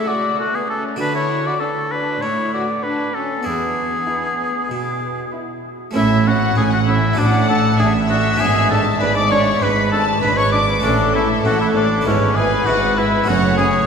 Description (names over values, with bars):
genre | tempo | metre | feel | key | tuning
classical, baroque-style concerto movement with solo episodes | 98 BPM | 4/4 | straight | A major | A4 = 438 Hz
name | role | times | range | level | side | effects
clear oboe | melody | 0.0-13.9 s | C#4 to D5 | -20 LUFS | left 1 dB | none
rich symphonic violin section | second line | 0.0-13.9 s | A3 to F#5 | -23 LUFS | left 2 dB | none
harpsichord | accompaniment | 0.0-13.9 s | E2 to F#4 | -25 LUFS | right 2 dB | none
rich chamber cello section | bass | 0.0-13.8 s | E2 to D3 | -23 LUFS | right 3 dB | none
rich chamber violin section | melody | 0.4-13.7 s | C#5 to E6 | -23 LUFS | left 4 dB | none
rich chamber viola section | accompaniment | 0.4-13.7 s | C#4 to A4 | -28 LUFS | right 1 dB | none
warm studio double bass section | bass | 6.0-13.8 s | F#1 to A1 | -22 LUFS | right 2 dB | none
room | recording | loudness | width
wet cathedral reverb, RT60 4.9 s | recorded in a church or concert hall | -15 LUFS | side -6 dB against mid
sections
0.0-5.9 A section; 5.9-13.9 B section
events
none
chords
0.0 A/C#; 1.0 D; 3.5 E; 5.9 A; 7.2 D/A; 8.4 E7/G#; 10.8 A; 12.1 E/G#; 13.3 F#m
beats
0.39 | 1.00 1.61 2.22 2.83 | 3.46 4.08 4.71 5.33 | 5.95 6.56 7.17 7.79 | 8.40 9.01 9.62 10.23 | 10.84 11.46 12.06 12.67 | 13.28